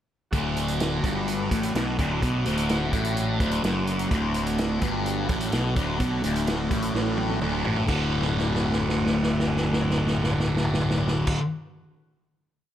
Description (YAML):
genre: psychedelic rock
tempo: 127 BPM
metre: 4/4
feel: straight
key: D major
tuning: A4 = 441 Hz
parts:
  - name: combo organ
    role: sustained chords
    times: 0.3-11.3 s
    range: F#3 to F#4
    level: -35 LUFS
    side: right 4 dB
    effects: none
  - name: thick fuzz guitar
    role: riff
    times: 0.3-11.4 s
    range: D2 to D3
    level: -25 LUFS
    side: left 1 dB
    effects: distortion, phaser
  - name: fuzz fingered electric bass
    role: bass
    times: 0.3-11.3 s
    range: D1 to B1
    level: -30 LUFS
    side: equal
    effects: overdrive
  - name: vintage drum kit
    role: drums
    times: 0.3-11.4 s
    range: crash cymbal, hi-hat, kick drum, snare drum, toms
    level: -28 LUFS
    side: equal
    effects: none
room: light reverb, small room ambience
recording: none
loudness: -22 LUFS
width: side -11 dB against mid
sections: 0.3-7.9 riff; 7.9-11.7 final chord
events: drum fill 6.9-7.9, 8.1-11.3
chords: 0.3 D